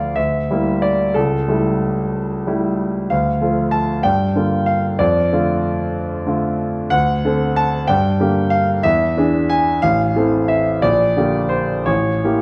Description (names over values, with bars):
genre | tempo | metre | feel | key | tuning
classical, romantic character piece for solo piano | 62 BPM (dotted quarters) | 6/8 | uneven beats, rubato | D minor | A4 = 436 Hz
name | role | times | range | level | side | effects
clear concert grand piano | solo | 0.0-12.4 s | A1 to A5 | -18 LUFS | equal | none
room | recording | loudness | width
wet recital hall reverb, RT60 1.5 s | none | -18 LUFS | mono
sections
0.0-12.4 A section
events
none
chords
0.2 Em7b5/D; 1.2 A7/C#; 3.1 Dm; 4.0 Gm7; 5.0 Dm/F; 6.9 D7; 7.9 Gm; 8.8 E7; 9.8 Am; 10.8 Gm/Bb; 11.9 A7b9